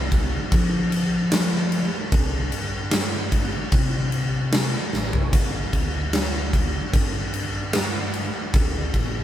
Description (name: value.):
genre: post-rock.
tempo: 75 BPM.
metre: 4/4.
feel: straight.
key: unclear.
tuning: A4 = 441 Hz.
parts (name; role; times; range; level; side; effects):
overdriven fingered electric bass; bass; 0.0-9.2 s; G1 to F3; -26 LUFS; left 1 dB; none.
huge arena drum kit; drums; 0.1-9.1 s; crash cymbal, kick drum, snare drum, splash cymbal, toms; -22 LUFS; equal; none.
room: light reverb.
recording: band playing live in one room.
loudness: -20 LUFS.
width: side -12 dB against mid.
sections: 0.0-9.2 A section.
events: drum fill 4.9-5.3.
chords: none.